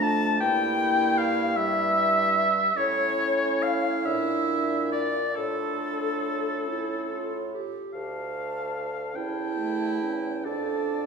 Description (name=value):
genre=classical, slow romantic movement for wind quintet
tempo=45-53 BPM (dotted quarters)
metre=6/8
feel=rubato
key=D minor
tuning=A4 = 439 Hz
part: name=mellow hollow concert flute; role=melody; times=0.0-11.1 s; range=A4 to A5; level=-31 LUFS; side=left 7 dB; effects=none
part: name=clear oboe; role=second line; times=0.0-11.1 s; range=A4 to A5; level=-27 LUFS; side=equal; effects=none
part: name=clear clarinet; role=accompaniment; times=0.0-11.1 s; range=D4 to A4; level=-31 LUFS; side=right 7 dB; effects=none
part: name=mellow French horn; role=accompaniment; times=0.0-11.1 s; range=G3 to D4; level=-34 LUFS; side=left 1 dB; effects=none
part: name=mellow bassoon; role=bass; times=0.0-11.1 s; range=D2 to Bb2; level=-33 LUFS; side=right 1 dB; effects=none
room=wet recital hall reverb, RT60 1.7 s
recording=recorded in a church or concert hall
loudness=-24 LUFS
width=side -5 dB against mid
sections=0.0-7.9 A section; 7.9-11.1 B section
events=none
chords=0.4 Edim/G; 2.8 A; 4.1 Dsus2; 5.4 Dm/A; 6.7 A; 7.9 Dm; 9.2 A5/E; 10.4 Dm/F